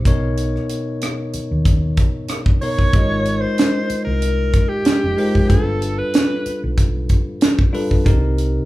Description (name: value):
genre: lush 1970s-style soul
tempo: 94 BPM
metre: 4/4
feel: swing 54% on 16ths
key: unclear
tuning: A4 = 440 Hz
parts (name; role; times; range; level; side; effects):
- bell-like tine electric piano; accompaniment; 0.0-8.7 s; B2 to Eb5; -23 LUFS; left 1 dB; none
- hollow-body short-scale fingered electric bass; bass; 0.0-8.6 s; F1 to D#2; -22 LUFS; equal; none
- tight funk drum kit; drums; 0.1-8.5 s; hi-hat, kick drum, rim click, snare drum; -17 LUFS; equal; none
- breathy alto saxophone; melody; 2.6-6.6 s; G4 to Db5; -22 LUFS; equal; none
room: light reverb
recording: band playing live in one room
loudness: -15 LUFS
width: side -17 dB against mid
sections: 0.0-8.7 A section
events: none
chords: 0.1 Bmaj7; 2.9 Ab69; 5.5 G7; 8.1 Cm7